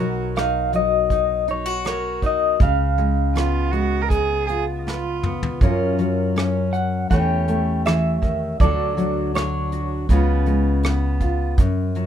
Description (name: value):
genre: acoustic folk-pop ballad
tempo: 80 BPM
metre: 4/4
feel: straight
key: unclear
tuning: A4 = 441 Hz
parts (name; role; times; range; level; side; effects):
- warm cello; second line; 0.0-5.6 s; E#4 to A#4; -25 LUFS; right 6 dB; none
- fingerpicked steel-string acoustic guitar; accompaniment; 0.0-12.1 s; F#2 to C#5; -23 LUFS; left 2 dB; none
- upright bass; bass; 0.0-12.1 s; B1 to F#2; -24 LUFS; right 1 dB; none
- electric guitar through a small old amp; melody; 0.4-11.2 s; C#5 to G5; -23 LUFS; left 2 dB; tremolo
- soft brush drum kit; drums; 0.4-12.1 s; hi-hat, kick drum, rim click, snare drum, toms; -21 LUFS; right 1 dB; none
room: light reverb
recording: minimal, uncompressed stereo recording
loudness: -18 LUFS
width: side -9 dB against mid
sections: 0.0-5.6 A section; 5.6-12.1 B section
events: drum fill 4.9-5.6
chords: 0.0 Bmaj7; 2.6 C#7; 5.6 F#maj7; 7.1 A7/E; 8.6 Dmaj7; 10.1 C#7